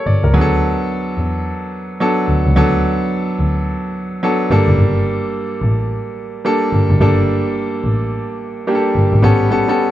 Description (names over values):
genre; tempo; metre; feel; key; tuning
R&B, new jack swing; 108 BPM; 4/4; swing 63% on 16ths; D major; A4 = 440 Hz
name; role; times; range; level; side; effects
bright grand piano; accompaniment; 0.0-9.9 s; F#3 to D5; -17 LUFS; equal; none
rich double bass; bass; 0.1-9.6 s; F#1 to E2; -15 LUFS; equal; none
room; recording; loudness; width
light reverb; dark, warm production; -14 LUFS; side -13 dB against mid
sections
0.0-9.2 A section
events
none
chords
0.3 D6; 4.5 Gmadd9; 9.2 A9